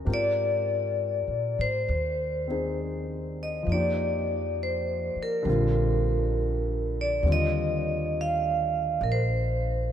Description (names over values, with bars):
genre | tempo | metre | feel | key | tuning
jazz ballad | 67 BPM | 4/4 | swing 67% on 8ths | Eb major | A4 = 435 Hz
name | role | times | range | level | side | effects
warm grand piano | accompaniment | 0.0-9.9 s | D3 to Bb4 | -32 LUFS | left 2 dB | none
upright bass | bass | 0.0-9.9 s | Bb1 to Bb2 | -29 LUFS | equal | none
vibraphone with medium hard mallets | melody | 0.1-9.9 s | Bb4 to F5 | -28 LUFS | equal | none
room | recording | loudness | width
moderate cathedral reverb, RT60 5.3 s | in a vast, echoing space | -25 LUFS | side -10 dB against mid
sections
0.0-9.9 A section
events
none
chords
0.1 Ab69; 3.7 F13sus4; 5.5 Bb69; 7.2 Eb69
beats
| 0.08 0.98 1.87 2.77 | 3.67 4.56 5.45 6.34 | 7.23 8.12 9.01 9.91